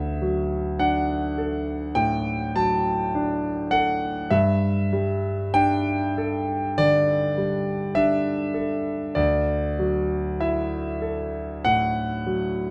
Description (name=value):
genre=classical, impressionist solo piano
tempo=45-52 BPM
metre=4/4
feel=rubato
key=unclear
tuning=A4 = 443 Hz
part: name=clear concert grand piano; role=solo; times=0.0-12.7 s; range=D2 to A5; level=-24 LUFS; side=equal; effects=none
room=light reverb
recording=none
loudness=-24 LUFS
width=mono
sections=0.0-12.7 A section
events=none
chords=0.0 Dadd9; 4.3 Gsus2; 9.2 Dadd9